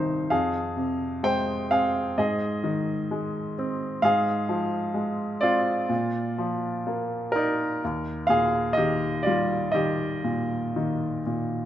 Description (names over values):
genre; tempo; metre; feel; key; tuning
classical, lyrical solo piano; 64 BPM; 4/4; rubato; Eb major; A4 = 441 Hz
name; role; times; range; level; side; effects
clear baby grand piano; solo; 0.0-11.7 s; C2 to G5; -23 LUFS; equal; none
room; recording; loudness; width
moderate recital hall reverb, RT60 1.5 s; none; -23 LUFS; side -11 dB against mid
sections
0.0-11.7 A section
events
none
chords
0.3 Fm; 2.2 Ab; 4.0 Fm/Ab; 5.9 Bb; 7.8 Eb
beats
| 0.31 1.25 2.19 3.12 | 4.04 4.96 5.90 6.87 | 7.82 8.77 9.75 10.75